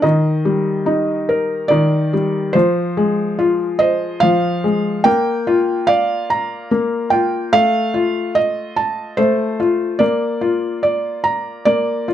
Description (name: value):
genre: children's music, lullaby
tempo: 72 BPM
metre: 3/4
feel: straight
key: unclear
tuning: A4 = 440 Hz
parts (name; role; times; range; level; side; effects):
- felt-muted upright piano; solo; 0.0-12.1 s; Eb3 to Bb5; -15 LUFS; equal; none
room: light reverb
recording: dry, close 1970s-style studio recording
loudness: -15 LUFS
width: side -10 dB against mid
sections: 0.0-2.5 A section; 2.5-12.1 B section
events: none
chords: 0.0 Eb; 2.5 Fm; 5.1 Bb; 7.5 F7/A; 10.0 Bb